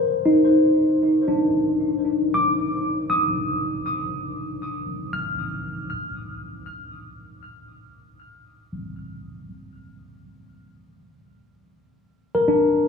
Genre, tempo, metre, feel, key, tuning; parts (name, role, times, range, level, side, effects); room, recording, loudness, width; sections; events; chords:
ambient; free time; A4 = 442 Hz
tine electric piano; solo; 0.0-12.9 s; D4 to F6; -20 LUFS; left 1 dB; wide subtle chorus, tape echo
wet plate reverb, RT60 3.5 s; echo-heavy mix; -20 LUFS; side -5 dB against mid
0.0-12.9 A section
0.0 Ebsus2; 5.9 N.C.